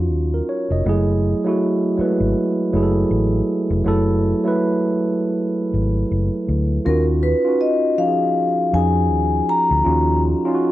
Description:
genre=R&B, neo-soul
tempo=80 BPM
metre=4/4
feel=swing 59% on 16ths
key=unclear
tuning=A4 = 440 Hz
part: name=mellow tine electric piano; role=accompaniment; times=0.0-10.7 s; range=F3 to Eb5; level=-19 LUFS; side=right 2 dB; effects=plate reverb
part: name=vintage muted fingered electric bass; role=bass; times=0.0-10.3 s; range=F1 to F2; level=-20 LUFS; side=left 1 dB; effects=none
part: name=vibraphone with medium mallets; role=melody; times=6.9-10.2 s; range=Bb4 to Bb5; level=-19 LUFS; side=left 3 dB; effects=plate reverb
room=light reverb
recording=none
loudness=-16 LUFS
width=side -15 dB against mid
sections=0.0-10.7 A section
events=none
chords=0.0 Ebm9; 0.8 Gbm9; 6.8 Ebm9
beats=0.10 | 0.85 1.60 2.35 3.10 | 3.85 4.60 5.35 6.10 | 6.85 7.60 8.35 9.10 | 9.85 10.60

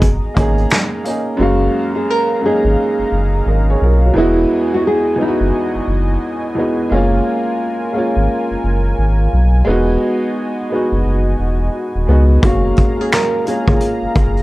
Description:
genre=lo-fi hip hop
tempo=87 BPM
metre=4/4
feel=swing 62% on 16ths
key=F# major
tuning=A4 = 439 Hz
part: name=warm upright piano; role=accompaniment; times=0.0-14.4 s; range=E2 to E#5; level=-18 LUFS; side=right 1 dB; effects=cassette tape, low-pass filter
part: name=warm analog pad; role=sustained chords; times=0.0-14.4 s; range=E#4 to A#5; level=-25 LUFS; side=equal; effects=chorus, low-pass filter
part: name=sub bass with octave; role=bass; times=0.0-14.4 s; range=D#1 to C#2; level=-15 LUFS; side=equal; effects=none
part: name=vintage brush drum kit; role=drums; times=0.0-1.3, 12.4-14.4 s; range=finger snaps, hi-hat, kick drum, snare drum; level=-15 LUFS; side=equal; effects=none
part: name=nylon-string guitar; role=melody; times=1.4-6.4, 12.4-14.4 s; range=D#4 to A#4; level=-18 LUFS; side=equal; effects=low-pass filter
room=light reverb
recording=none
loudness=-13 LUFS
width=side -18 dB against mid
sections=0.0-1.4 A section; 1.4-14.4 B section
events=none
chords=0.0 F#69; 1.4 F#maj9; 4.2 Emaj9; 6.9 F#maj9; 9.7 Emaj9; 12.4 F#maj9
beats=0.02 0.71 | 1.40 2.09 2.78 3.47 | 4.16 4.85 5.54 6.23 | 6.92 7.61 8.30 8.99 | 9.68 10.37 11.05 11.74 | 12.43 13.12 13.81

